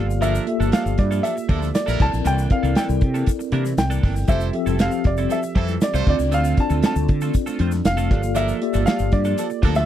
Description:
polished 1980s jazz-funk pop; 118 BPM; 4/4; straight; A4 = 440 Hz
warm baby grand piano; melody; 0.0-9.9 s; D5 to A5; -26 LUFS; right 1 dB; slapback echo
mellow tine electric piano; accompaniment; 0.0-9.9 s; F3 to E5; -25 LUFS; left 3 dB; medium stereo tremolo, wide subtle chorus
twelve-string electric guitar; riff; 0.0-9.8 s; E3 to C5; -31 LUFS; right 4 dB; wide subtle chorus
mellow fretless electric bass; bass; 0.0-9.8 s; F1 to D3; -22 LUFS; equal; lush chorus
egg shaker; percussion; 0.1-9.9 s; -42 LUFS; left 13 dB
warm horn section; second line; 0.2-9.8 s; E3 to C5; -30 LUFS; right 6 dB
modern studio drum kit; drums; 0.2-9.8 s; crash cymbal, hi-hat, kick drum, snare drum; -20 LUFS; equal
little or no reverb; dry, close 1970s-style studio recording; -18 LUFS; side -11 dB against mid
0.0-9.9 A section
0.0 Gm9; 2.0 C13; 4.3 Fmaj9; 6.1 Dm7; 8.1 Gm9

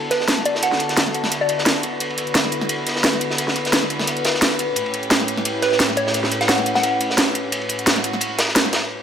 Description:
liquid drum and bass; 174 BPM; 4/4; swing 54% on 16ths; D major; A4 = 439 Hz
warm chamber string section; sustained chords; 0.0-8.9 s; A2 to B4; -24 LUFS; left 1 dB; low-pass filter
hollow square pluck; melody; 0.1-1.9, 5.6-7.2 s; B4 to F#5; -22 LUFS; right 1 dB; chorus, tape echo
crunchy breakbeat drum kit; drums; 0.1-8.8 s; ride cymbal, snare drum; -23 LUFS; equal; high-pass filter on cymbals, high-pass filter on snare, high-pass filter on room
drum and bass drum kit; drums; 0.1-8.8 s; hi-hat, snare drum; -20 LUFS; right 1 dB; overdrive
wet digital room reverb, RT60 1.1 s; -17 LUFS; side -8 dB against mid
0.0-9.0 A section
build-up 0.0-9.0; filter sweep on string section 0.0-9.0
0.0 D69; 4.8 A9

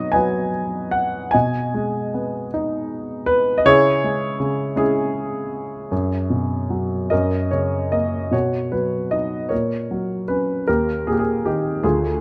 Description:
classical, lyrical solo piano; 49-54 BPM (dotted quarters); 6/8; rubato; B major; A4 = 441 Hz
dark grand piano; solo; 0.0-12.2 s; D2 to G#5; -21 LUFS; equal
light reverb; close, detailed microphones; -21 LUFS; mono
0.0-8.3 A section; 8.3-12.2 B section
0.0 B; 1.3 G#m/B; 3.7 C#m; 5.9 B5/F#; 7.1 F#; 8.3 B; 9.5 F#/A#; 10.7 D#

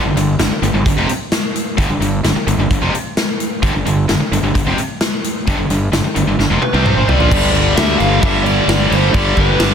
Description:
hard rock; 130 BPM; 4/4; straight; A4 = 439 Hz
sludgy distorted guitar; riff; 0.0-9.7 s; F2 to C4; -20 LUFS; right 1 dB; overdrive
tight distorted guitar; riff; 0.0-9.7 s; F2 to C4; -19 LUFS; equal; distortion
fuzz fingered electric bass; bass; 0.0-9.7 s; F1 to D2; -18 LUFS; equal; overdrive
big rock drum kit; drums; 0.2-9.7 s; crash cymbal, hi-hat, kick drum, snare drum, toms; -17 LUFS; equal
nasal lead guitar with a parked wah; melody; 6.6-9.7 s; B4 to F5; -18 LUFS; left 2 dB; overdrive
light reverb; dense, heavily limited modern master; -13 LUFS; side -8 dB against mid
0.0-7.3 A section; 7.3-9.7 B section
drum fill 6.4-7.3
0.0 G5

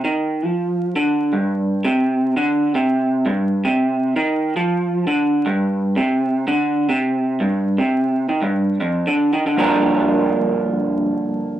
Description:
rock; 116 BPM; 4/4; straight; A4 = 440 Hz
electric guitar through a small old amp; solo; 0.0-11.6 s; F2 to Bb4; -17 LUFS; right 1 dB; harmonic tremolo
wet studio ambience, RT60 0.5 s; rough rehearsal-room recording, vinyl crackle; -16 LUFS; side -12 dB against mid
0.0-9.6 A section; 9.6-11.6 B section
0.0 G5; 9.6 Gm7

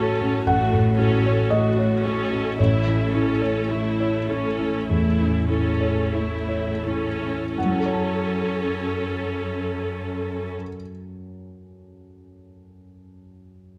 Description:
cinematic; 40-60 BPM; 4/4; rubato; F# minor; A4 = 440 Hz
dark baby grand piano; accompaniment; 0.0-13.8 s; A1 to A5; -26 LUFS; equal
warm symphonic viola section; accompaniment; 0.0-10.5 s; A3 to A4; -29 LUFS; equal
concert harp; arpeggios; 0.0-11.5 s; F#2 to A5; -33 LUFS; equal
warm symphonic cello section; bass; 0.0-10.5 s; F#2 to A2; -31 LUFS; equal
light reverb; close, detailed microphones; -23 LUFS; mono
0.0-7.6 A section; 7.6-13.0 B section
slowing down 0.0-7.6
0.0 F#m/A; 2.6 A; 7.6 F#m

